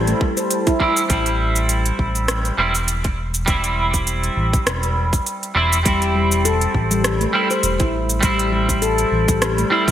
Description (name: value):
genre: organic downtempo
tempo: 101 BPM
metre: 4/4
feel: swing 55% on 16ths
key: A minor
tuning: A4 = 440 Hz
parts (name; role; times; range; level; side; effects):
- clean electric guitar; accompaniment; 0.0-9.9 s; G3 to E4; -21 LUFS; right 2 dB; lush chorus, sidechain pumping, digital delay
- warbly tape-like pad; sustained chords; 0.0-1.1 s; E4 to A5; -30 LUFS; right 1 dB; chorus, built-in reverb, sidechain pumping
- smooth gliding synth bass; bass; 0.0-9.9 s; E1 to C2; -21 LUFS; equal; sidechain pumping
- handpan; arpeggios; 0.1-1.1, 5.9-9.9 s; G3 to C5; -21 LUFS; left 2 dB; digital delay
- organic electronic drum kit; drums; 0.1-9.9 s; hi-hat, rim click, shaker; -23 LUFS; right 1 dB; overdrive, gated reverb
- electronic kick drum; drums; 0.2-9.9 s; none; -20 LUFS; equal; overdrive
room: moderate lush hall reverb, RT60 2.0 s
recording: bright 1980s-style digital production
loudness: -16 LUFS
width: side -11 dB against mid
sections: 0.0-1.1 A section; 1.1-9.9 B section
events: none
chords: 0.0 Am7